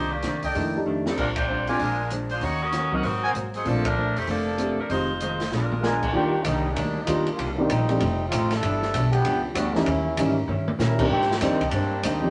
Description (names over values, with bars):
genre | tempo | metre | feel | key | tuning
jazz, big band swing | 193 BPM | 4/4 | swing 62% on 8ths | Bb major, Eb major from 6.1 s | A4 = 440 Hz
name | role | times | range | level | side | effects
bright saxophone section | melody | 0.0-6.0 s | Eb3 to Gb5 | -30 LUFS | equal | none
hollow-body jazz guitar | accompaniment | 0.0-12.2 s | F2 to G4 | -33 LUFS | equal | none
upright bass | bass | 0.0-12.3 s | F1 to C3 | -31 LUFS | equal | none
open jazz drum kit | drums | 0.2-12.1 s | crash cymbal, hi-hat, kick drum, ride cymbal, snare drum, toms | -34 LUFS | equal | none
warm trumpet section | stabs | 0.4-3.3, 5.8-6.1 s | Cb4 to Ab5 | -30 LUFS | equal | none
dark concert grand piano | accompaniment | 0.6-12.3 s | Eb3 to Ab4 | -29 LUFS | equal | none
brilliant trombone section | second line | 5.8-12.3 s | D3 to Bb4 | -29 LUFS | equal | none
room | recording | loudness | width
wet studio reverb, RT60 0.7 s | nothing above 10.6 kHz | -24 LUFS | mono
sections
0.0-6.1 A section; 6.1-12.3 B section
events
drum fill 0.9-1.2, 5.5-5.8, 10.5-10.8; band accent 1.3, 3.8; trombone section solo 6.1-12.3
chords
0.0 Cm9; 0.5 F13; 1.2 Bb69; 1.8 Bb7; 2.4 Ebm7; 3.0 Ab9; 3.7 Bbmaj7; 4.9 Fm7; 5.5 Bb7b9; 6.1 Ebmaj7; 7.4 Cm7; 8.0 F9; 8.6 G6; 9.9 Eb7b9; 11.1 Abmaj9#11